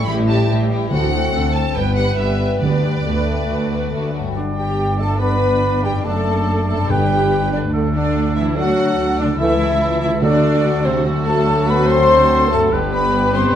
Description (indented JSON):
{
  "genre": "classical",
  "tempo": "143 BPM",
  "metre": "4/4",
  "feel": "straight",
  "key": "G major",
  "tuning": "A4 = 445 Hz",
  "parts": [
    { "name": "rich studio violin section", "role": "melody", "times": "0.0-13.6 s", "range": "D4 to B5", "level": "-30 LUFS", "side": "left 1 dB", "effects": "none" },
    { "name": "warm symphonic violin section", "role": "second line", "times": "0.0-13.4 s", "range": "A3 to C6", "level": "-29 LUFS", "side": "left 2 dB", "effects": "none" },
    { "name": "rich symphonic viola section", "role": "accompaniment", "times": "0.0-13.6 s", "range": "C4 to C5", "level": "-24 LUFS", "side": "right 1 dB", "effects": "none" },
    { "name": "warm French horn section", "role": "sustained chords", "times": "0.0-13.5 s", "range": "C3 to E4", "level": "-22 LUFS", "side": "left 3 dB", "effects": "none" },
    { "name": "concert harp", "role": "arpeggios", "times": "0.0-13.6 s", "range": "F2 to D5", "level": "-25 LUFS", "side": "left 8 dB", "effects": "none" },
    { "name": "clear symphonic double bass section", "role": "bass", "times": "0.1-13.6 s", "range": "F#1 to D2", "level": "-24 LUFS", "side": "right 3 dB", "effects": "none" },
    { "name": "warm symphonic cello section", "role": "bass", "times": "0.1-13.6 s", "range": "C#2 to A2", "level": "-23 LUFS", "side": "right 2 dB", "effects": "none" },
    { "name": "timpani", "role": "percussion", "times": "0.9-3.2, 6.9-7.5, 10.2-10.8 s", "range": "G2 to D3", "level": "-24 LUFS", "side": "right 2 dB", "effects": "none" },
    { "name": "mellow clarinet", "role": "second line", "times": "4.4-13.6 s", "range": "D4 to G4", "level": "-27 LUFS", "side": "left 3 dB", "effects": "none" },
    { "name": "warm oboe", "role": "second line", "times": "4.4-13.6 s", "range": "A4 to D5", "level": "-27 LUFS", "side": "right 2 dB", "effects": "none" },
    { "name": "clear trombone section", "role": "sustained chords", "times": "4.4-13.6 s", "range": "D3 to D4", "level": "-26 LUFS", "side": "right 5 dB", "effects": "none" },
    { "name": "mellow hollow concert flute", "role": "second line", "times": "4.6-13.6 s", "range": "C5 to C6", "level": "-21 LUFS", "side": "left 1 dB", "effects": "none" }
  ],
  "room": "moderate scoring stage reverb, RT60 1.5 s",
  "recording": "none",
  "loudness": "-15 LUFS",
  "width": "side -10 dB against mid",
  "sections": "0.0-4.4 A section; 4.4-13.6 B section",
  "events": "none",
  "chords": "0.0 A7(no3); 0.9 D7; 1.8 G; 2.6 G/D; 3.5 D; 4.4 G; 6.1 D/F#; 6.9 G; 7.7 D; 9.4 A/C#; 10.2 D; 12.7 G",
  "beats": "0.06 0.49 | 0.91 1.33 1.76 2.18 | 2.62 3.06 3.50 3.93 | 4.37 4.80 5.22 5.64 | 6.06 6.47 6.90 7.32 | 7.74 8.15 8.57 8.98 | 9.40 9.81 10.23 10.64 | 11.06 11.47 11.89 12.30 | 12.72 13.13 13.55"
}